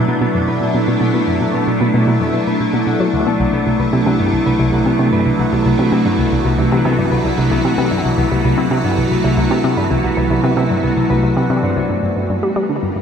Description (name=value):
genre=ambient, sequencer-driven space music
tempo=113 BPM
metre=4/4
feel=straight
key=unclear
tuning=A4 = 437 Hz
part: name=evolving wavetable pad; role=sustained chords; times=0.0-13.0 s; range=C2 to Bb4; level=-18 LUFS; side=equal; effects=ensemble chorus, built-in reverb, phaser
part: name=concert harp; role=arpeggios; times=0.0-13.0 s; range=B2 to B4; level=-19 LUFS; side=moving between left 4 dB and right 3 dB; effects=auto-pan, tape echo
part: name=analog pluck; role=riff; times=0.0-13.0 s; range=C2 to G3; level=-17 LUFS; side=equal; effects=chorus, tape echo
room=moderate huge ambient reverb, RT60 7.8 s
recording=none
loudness=-13 LUFS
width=side -7 dB against mid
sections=0.0-11.9 A section; 11.9-13.0 B section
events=filter sweep on synth arpeggio sound 0.0-11.9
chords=0.0 Bm; 3.4 Csus2; 11.9 Gm